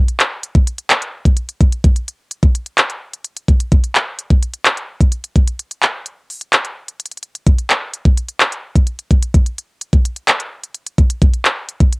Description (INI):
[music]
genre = hip hop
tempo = 128 BPM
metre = 4/4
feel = half-time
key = none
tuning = none
[part]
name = trap drum kit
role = drums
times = 0.1-12.0 s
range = handclaps, hi-hat, kick drum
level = -12 LUFS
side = equal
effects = cassette tape
[sound]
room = little or no reverb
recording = home recording on cassette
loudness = -14 LUFS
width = side -34 dB against mid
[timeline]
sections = 0.0-12.0 A section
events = break 5.6-7.5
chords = none